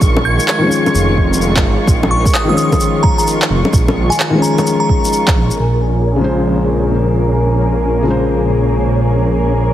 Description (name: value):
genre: future garage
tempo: 129 BPM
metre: 4/4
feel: swing 64% on 16ths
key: Bb minor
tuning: A4 = 441 Hz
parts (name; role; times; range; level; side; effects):
- felt-muted upright piano; accompaniment; 0.0-9.7 s; Db3 to C5; -17 LUFS; left 2 dB; sidechain pumping, tape echo
- muted studio string section; sustained chords; 0.0-9.7 s; Eb3 to Db6; -20 LUFS; right 1 dB; sidechain pumping, low-pass filter
- swelling detuned saw bass; bass; 0.0-9.7 s; F1 to Bb1; -15 LUFS; right 1 dB; sidechain pumping
- electronic kick drum; drums; 0.0-5.3 s; none; -15 LUFS; right 1 dB; overdrive, studio reverb
- electronic shaker, bongos and handclaps; drums; 0.0-5.6 s; none; -18 LUFS; left 1 dB; overdrive, studio reverb
- glassy synth bell; melody; 0.3-5.4 s; Ab5 to Ab6; -20 LUFS; right 1 dB; chorus, ping-pong delay
- flickering grainy texture; texture; 5.6-9.7 s; Db4 to Db5; -25 LUFS; right 2 dB; built-in reverb
room: light reverb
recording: heavily compressed radio sound, multiband compression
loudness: -11 LUFS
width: side -12 dB against mid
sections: 0.0-5.6 A section; 5.6-9.7 B section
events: filter sweep on string section 5.6-9.7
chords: 0.0 Dbadd9; 5.6 Bbm9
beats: | 0.01 0.48 0.94 1.41 | 1.87 2.34 2.80 3.27 | 3.73 4.20 4.66 5.13 | 5.59 6.06 6.52 6.99 | 7.45 7.92 8.38 8.85 | 9.31